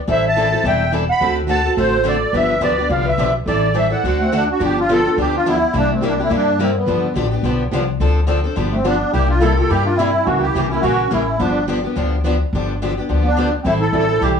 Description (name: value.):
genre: acoustic string swing (jazz manouche).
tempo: 212 BPM.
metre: 4/4.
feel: swing 57% on 8ths.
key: G mixolydian.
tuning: A4 = 440 Hz.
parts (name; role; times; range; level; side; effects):
musette accordion; melody; 0.1-14.4 s; B3 to B5; -19 LUFS; right 2 dB; none.
breathy clarinet; second line; 0.1-14.4 s; G3 to F#5; -23 LUFS; right 1 dB; none.
picked plugged-in steel-string acoustic guitar; accompaniment; 0.1-14.4 s; C3 to A4; -25 LUFS; right 4 dB; none.
picked steel-string acoustic guitar; accompaniment; 0.1-14.4 s; C3 to A4; -22 LUFS; left 4 dB; none.
upright bass; bass; 0.1-14.4 s; E1 to G2; -21 LUFS; left 2 dB; none.
room: moderate studio reverb, RT60 0.6 s.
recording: worn, warbling old tape, cassette tape, warbly pitch drift, studio ambience.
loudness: -15 LUFS.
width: side -6 dB against mid.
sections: 0.0-4.6 A section; 4.6-14.4 A section.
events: none.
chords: 0.1 Am7; 1.2 D7; 2.3 G7; 3.5 Am7; 4.0 D7; 4.6 G7; 5.7 C7; 6.9 G7; 8.0 Dm7; 8.6 G7; 9.1 C7; 10.3 C#dim7; 11.4 G7; 13.7 Am7.